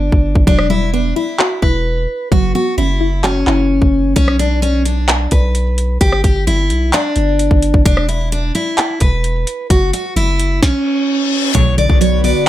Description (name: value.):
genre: hip hop, trap.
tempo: 130 BPM.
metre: 4/4.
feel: half-time.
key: B minor.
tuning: A4 = 440 Hz.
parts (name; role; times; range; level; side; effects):
picked steel-string acoustic guitar; melody; 0.0-12.5 s; C#4 to D5; -17 LUFS; equal; ping-pong delay.
soft round pluck; accompaniment; 0.0-4.2, 11.6-12.5 s; B2 to F#4; -19 LUFS; right 2 dB; chorus.
long sustained 808-style bass; bass; 0.0-12.3 s; E1 to B1; -16 LUFS; equal; none.
trap drum kit; drums; 0.1-12.3 s; handclaps, hi-hat, kick drum, rim click, snare drum; -14 LUFS; equal; none.
reverse cymbal and impact; sound effects; 10.8-12.5 s; none; -22 LUFS; left 4 dB; none.
airy breathy pad; sustained chords; 11.5-12.5 s; D3 to B4; -21 LUFS; right 2 dB; chorus.
bright symphonic string section; stabs; 11.5-11.7 s; D2 to F#3; -25 LUFS; left 7 dB; ping-pong delay.
room: light reverb.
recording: none.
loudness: -12 LUFS.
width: side -13 dB against mid.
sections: 0.0-11.5 A section.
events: break 0.0-4.2; reverse cymbal 10.8-11.5; impact 11.5-12.5.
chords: 0.5 Emadd9; 2.3 F#7sus4; 4.2 Bm; 6.0 G5; 7.9 E5; 9.7 F#5; 11.5 Bmadd9.